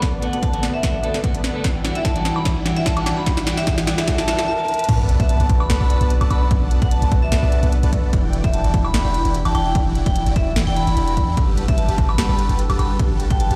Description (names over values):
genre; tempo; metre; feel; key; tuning
future bass; 148 BPM; 4/4; swing 53% on 16ths, half-time; E minor; A4 = 439 Hz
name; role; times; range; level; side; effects
ethereal airy pad; sustained chords; 0.0-4.5 s; E3 to F#5; -37 LUFS; equal; none
supersaw chords; riff; 0.0-13.6 s; E3 to A5; -29 LUFS; equal; sidechain pumping, low-pass filter
warm 808-style bass; bass; 0.0-13.6 s; E1 to E2; -22 LUFS; equal; sidechain pumping, high-pass filter
electronic kick drum; drums; 0.0-13.4 s; none; -23 LUFS; equal; overdrive
trap drum kit; drums; 0.0-13.6 s; crash cymbal, hi-hat, snare drum, woodblock; -28 LUFS; equal; none
riser and sub drop; sound effects; 2.5-6.5 s; none; -31 LUFS; equal; none
clean electric guitar; accompaniment; 0.2-4.4 s; D3 to A4; -30 LUFS; equal; sidechain pumping, dub echo
vibraphone with hard mallets; melody; 0.3-13.5 s; E5 to B5; -28 LUFS; equal; vintage 12-bit sampler grit, sidechain pumping, delay
concert harp; arpeggios; 4.9-13.6 s; D4 to B4; -34 LUFS; equal; sidechain pumping, dub echo
room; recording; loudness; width
light reverb; played on a big sound system in a bare room, large studio reverb; -19 LUFS; mono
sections
0.0-4.9 A section; 4.9-13.6 B section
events
build-up 0.0-4.9; drum fill 0.0-4.5, 4.7; filter sweep on supersaw synth 0.0-4.9; drop 4.9-13.6; impact 4.9-6.5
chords
0.0 Bm7; 1.6 Em9; 4.9 Bm7; 8.1 Em9; 11.4 Gmaj9